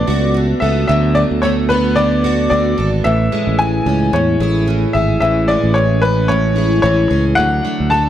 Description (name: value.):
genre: pop.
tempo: 111 BPM.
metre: 4/4.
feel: swing 55% on 16ths.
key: A major.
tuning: A4 = 441 Hz.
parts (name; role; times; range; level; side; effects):
bright upright piano; melody; 0.0-8.1 s; B4 to A5; -17 LUFS; left 2 dB; plate reverb, ping-pong delay.
picked plugged-in steel-string acoustic guitar; accompaniment; 0.0-8.1 s; A2 to F#4; -18 LUFS; equal; double-tracked left and right, plate reverb.
picked steel-string acoustic guitar; arpeggios; 0.0-8.1 s; E3 to A4; -26 LUFS; right 5 dB; plate reverb, ping-pong delay.
fingered electric bass; bass; 0.0-8.1 s; G#1 to E2; -17 LUFS; right 1 dB; none.
room: light reverb.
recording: none.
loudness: -12 LUFS.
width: side -11 dB against mid.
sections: 0.0-8.1 A section.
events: none.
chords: 0.0 D6; 3.1 Amaj7; 7.4 D.